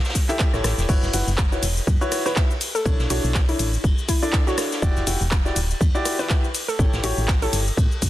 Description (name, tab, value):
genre	piano house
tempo	122 BPM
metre	4/4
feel	swing 57% on 16ths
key	B minor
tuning	A4 = 442 Hz
part	punchy analog drum machine	drums	0.0-8.1 s	cabasa, crash cymbal, handclaps, hi-hat, ride cymbal, rim click	-27 LUFS	left 1 dB	soft clipping on snare
part	vintage brush drum kit	drums	0.0-8.1 s	ride cymbal, snare drum	-34 LUFS	left 1 dB	sidechain pumping on cymbals, high-pass filter on cymbals, high-pass filter on snare, high-pass filter on room
part	electronic kick drum	drums	0.2-8.1 s	none	-20 LUFS	equal	none
part	warm baby grand piano	riff	0.3-7.6 s	D4 to F#5	-27 LUFS	left 1 dB	sidechain pumping, dub echo
part	solid FM bass	bass	0.5-8.1 s	D1 to A2	-24 LUFS	equal	tube saturation, sidechain pumping
part	hollow square pluck	melody	2.3-8.1 s	E4 to B4	-28 LUFS	equal	chorus, dub echo
room	studio reverb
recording	dense, heavily limited modern master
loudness	-19 LUFS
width	side -15 dB against mid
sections	0.0-8.1 A section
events	none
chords	0.0 A7; 0.9 F#7sus4; 2.6 Bm11; 4.8 Em9; 6.5 A7